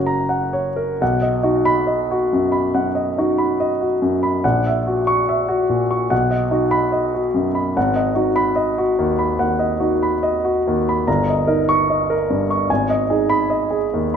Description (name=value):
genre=classical, romantic character piece for solo piano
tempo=72 BPM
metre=4/4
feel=rubato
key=B major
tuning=A4 = 441 Hz
part: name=warm concert grand piano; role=solo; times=0.0-14.2 s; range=G1 to C#6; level=-16 LUFS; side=equal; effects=none
room=moderate recital hall reverb, RT60 1.7 s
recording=minimal, uncompressed stereo recording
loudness=-16 LUFS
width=side -7 dB against mid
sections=0.0-1.0 A section; 1.0-14.2 B section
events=none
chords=0.0 F#; 1.0 B; 4.4 F#7/A#; 6.1 B; 7.8 G#m7; 11.1 D#7/G; 12.7 G#m